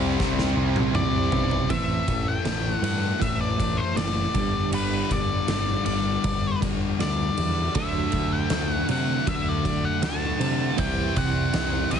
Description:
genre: quiet-loud alternative rock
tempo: 79 BPM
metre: 4/4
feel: straight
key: A dorian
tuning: A4 = 443 Hz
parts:
  - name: fuzz guitar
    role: riff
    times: 0.0-1.7 s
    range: C3 to E4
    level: -29 LUFS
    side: equal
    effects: distortion
  - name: thick fuzz guitar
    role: riff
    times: 0.0-12.0 s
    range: G2 to D4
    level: -30 LUFS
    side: left 11 dB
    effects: distortion
  - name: thick fuzz guitar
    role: riff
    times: 0.0-1.7, 7.8-12.0 s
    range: C3 to D4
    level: -30 LUFS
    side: right 10 dB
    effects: distortion
  - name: growling picked electric bass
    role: bass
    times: 0.0-12.0 s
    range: F#1 to C3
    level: -29 LUFS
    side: equal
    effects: overdrive
  - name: oversized low-tuned drum kit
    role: drums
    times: 0.2-12.0 s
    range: kick drum, ride cymbal, snare drum, toms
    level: -28 LUFS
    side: equal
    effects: none
  - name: octave-fuzz lead guitar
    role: melody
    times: 0.9-12.0 s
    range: B4 to A5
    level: -29 LUFS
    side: left 3 dB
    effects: distortion
  - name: twelve-string electric guitar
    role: arpeggios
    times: 1.7-12.0 s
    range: G2 to C4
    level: -31 LUFS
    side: right 9 dB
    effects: tremolo, analog delay
room: light reverb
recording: heavily compressed radio sound, multiband compression, nothing above 10.6 kHz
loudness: -22 LUFS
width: side -8 dB against mid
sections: 0.0-1.7 A section; 1.7-12.0 B section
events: drum fill 0.2-1.7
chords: 0.0 Cadd9; 1.7 Am; 4.4 G5; 7.8 D; 10.8 C

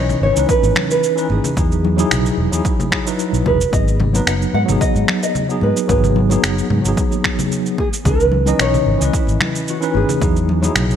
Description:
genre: sunset chillout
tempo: 111 BPM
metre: 4/4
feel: swing 53% on 16ths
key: G# minor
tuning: A4 = 436 Hz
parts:
  - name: nylon-string guitar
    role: melody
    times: 0.0-11.0 s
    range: E4 to F#5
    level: -20 LUFS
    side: right 2 dB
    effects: digital delay
  - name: tine electric piano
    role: accompaniment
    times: 0.0-11.0 s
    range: E3 to D#5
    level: -20 LUFS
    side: equal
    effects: medium stereo tremolo, auto-pan, digital delay
  - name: fingered electric bass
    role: bass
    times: 0.0-10.9 s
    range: E1 to G#2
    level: -18 LUFS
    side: equal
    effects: none
  - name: electronic congas, cabasa and finger snaps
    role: drums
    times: 0.1-11.0 s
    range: none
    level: -22 LUFS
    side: left 2 dB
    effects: none
  - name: electronic kick drum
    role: drums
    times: 0.5-10.3 s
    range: none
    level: -19 LUFS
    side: equal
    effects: overdrive
  - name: congas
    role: percussion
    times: 0.6-10.7 s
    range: none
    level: -26 LUFS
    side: left 4 dB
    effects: none
room: light reverb, digital ambience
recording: none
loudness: -14 LUFS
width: side -9 dB against mid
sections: 0.0-11.0 A section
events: none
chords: 0.0 C#m9; 1.6 Emaj9; 3.7 G#m7; 7.8 C#m9; 10.2 Emaj9

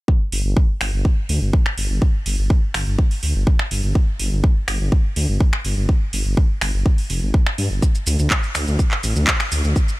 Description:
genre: progressive house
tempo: 124 BPM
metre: 4/4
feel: straight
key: unclear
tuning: A4 = 439 Hz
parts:
  - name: electronic kick drum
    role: drums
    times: 0.1-9.9 s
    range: none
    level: -16 LUFS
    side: equal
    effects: none
  - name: dark detuned saw bass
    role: bass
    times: 0.3-9.7 s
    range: F1 to G2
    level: -20 LUFS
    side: equal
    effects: sidechain pumping
  - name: house drum kit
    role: drums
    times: 0.3-10.0 s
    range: finger snaps, handclaps, hi-hat, shaker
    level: -24 LUFS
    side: right 1 dB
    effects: none
room: little or no reverb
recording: none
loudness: -17 LUFS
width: side -19 dB against mid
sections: 0.1-10.0 A section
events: none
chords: none

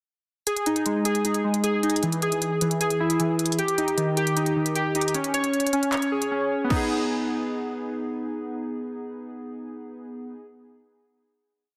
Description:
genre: hip hop, trap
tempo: 154 BPM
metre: 4/4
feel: half-time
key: G# harmonic minor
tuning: A4 = 441 Hz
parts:
  - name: warbly lo-fi synth keys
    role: arpeggios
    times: 0.5-10.5 s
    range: D#3 to C#5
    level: -26 LUFS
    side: equal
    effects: chorus, delay
  - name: trap drum kit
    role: drums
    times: 0.5-6.8 s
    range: crash cymbal, handclaps, hi-hat, kick drum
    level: -31 LUFS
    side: equal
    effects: none
room: light reverb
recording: dense, heavily limited modern master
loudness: -25 LUFS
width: mono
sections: 0.5-6.7 breakdown; 6.7-9.8 final chord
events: drums muted 6.3-6.7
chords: 0.5 G#5; 2.0 E; 3.6 D#; 5.1 C#5; 6.7 G#m

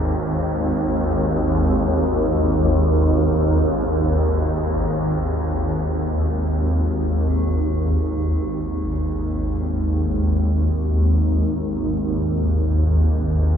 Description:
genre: dark ambient drone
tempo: free time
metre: none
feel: none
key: unclear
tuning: A4 = 440 Hz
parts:
  - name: swarming drone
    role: drone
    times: 0.0-13.6 s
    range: G#1 to D#2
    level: -18 LUFS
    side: equal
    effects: built-in reverb
  - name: bronze singing bowl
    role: texture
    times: 7.3-13.6 s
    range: G#4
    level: -41 LUFS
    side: left 1 dB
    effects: stereo widening, shimmer reverb
room: wet huge ambient reverb, RT60 7.3 s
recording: none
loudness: -18 LUFS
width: side -8 dB against mid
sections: 0.0-7.3 A section; 7.3-13.6 B section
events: none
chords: 0.0 G#5

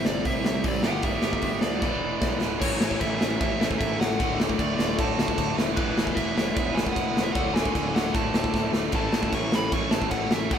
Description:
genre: punk rock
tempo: 152 BPM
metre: 4/4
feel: straight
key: unclear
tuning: A4 = 440 Hz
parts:
  - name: nasal lead guitar with a parked wah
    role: melody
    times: 0.0-10.6 s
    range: B4 to C#6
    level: -32 LUFS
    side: left 1 dB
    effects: overdrive
  - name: biting overdriven guitar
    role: riff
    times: 0.0-10.6 s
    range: D2 to C4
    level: -34 LUFS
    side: left 7 dB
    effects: none
  - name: tight distorted guitar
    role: riff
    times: 0.0-10.6 s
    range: D2 to C5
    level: -29 LUFS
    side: right 5 dB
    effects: distortion
  - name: fuzz picked electric bass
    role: bass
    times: 0.0-10.6 s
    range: D1 to D2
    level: -33 LUFS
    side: equal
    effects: overdrive
  - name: big rock drum kit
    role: drums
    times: 0.0-10.6 s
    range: crash cymbal, hi-hat, kick drum, snare drum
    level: -25 LUFS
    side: equal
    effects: none
room: light reverb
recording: band playing live in one room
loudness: -22 LUFS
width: side -8 dB against mid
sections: 0.0-2.6 A section; 2.6-10.6 B section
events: drum fill 1.8-2.6, 8.5-8.9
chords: 0.0 C; 0.8 G; 1.8 E7; 2.6 A; 4.2 D; 5.8 E; 7.3 D; 8.9 A

